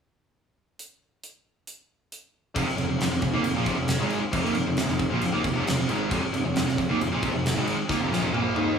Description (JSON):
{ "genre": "classic rock", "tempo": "135 BPM", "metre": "4/4", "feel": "straight", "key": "F minor", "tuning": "A4 = 440 Hz", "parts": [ { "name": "gated 80s drum kit", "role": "drums", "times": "0.8-8.7 s", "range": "crash cymbal, hi-hat, kick drum, snare drum, toms", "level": "-29 LUFS", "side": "equal", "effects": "none" }, { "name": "tight distorted guitar", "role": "riff", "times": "2.5-8.8 s", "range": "F2 to Eb4", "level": "-28 LUFS", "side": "left 4 dB", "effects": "distortion" }, { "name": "tonewheel organ", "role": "sustained chords", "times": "2.6-8.8 s", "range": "C4 to F5", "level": "-36 LUFS", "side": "right 2 dB", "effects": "none" }, { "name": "overdriven electric guitar", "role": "riff", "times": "2.6-8.8 s", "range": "F2 to Eb4", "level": "-29 LUFS", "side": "right 7 dB", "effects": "none" }, { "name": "fuzz fingered electric bass", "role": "bass", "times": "2.6-8.8 s", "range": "F1 to Eb2", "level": "-30 LUFS", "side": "equal", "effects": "overdrive" } ], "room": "wet large studio reverb, RT60 0.8 s", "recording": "band playing live in one room", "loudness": "-23 LUFS", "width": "side -6 dB against mid", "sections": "0.8-2.6 A section; 2.6-8.8 B section", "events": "drum fill 7.9-8.8", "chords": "0.8 N.C.; 2.6 Fm" }